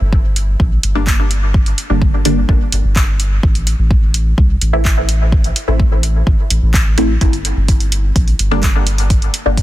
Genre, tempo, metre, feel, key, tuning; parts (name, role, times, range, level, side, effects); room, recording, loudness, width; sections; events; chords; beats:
dub techno; 127 BPM; 4/4; straight; G dorian; A4 = 440 Hz
soft dub sub bass; bass; 0.0-9.6 s; G1 to C2; -15 LUFS; equal; sidechain pumping
electronic kick drum; drums; 0.1-9.6 s; -14 LUFS; equal
soft vintage rhythm box; drums; 0.4-9.6 s; handclaps, hi-hat; -21 LUFS; right 1 dB; dub echo
filtered dub chord stab; stabs; 1.0-9.6 s; D3 to E4; -20 LUFS; equal; phaser, sidechain pumping, dub echo
little or no reverb; dense, heavily limited modern master; -12 LUFS; side -15 dB against mid
0.0-9.6 A section
0.0 Gm; 3.4 Am; 7.2 Gm
0.13 0.60 1.07 | 1.54 2.02 2.49 2.96 | 3.43 3.91 4.38 4.85 | 5.32 5.79 6.27 6.74 | 7.21 7.68 8.16 8.63 | 9.10 9.57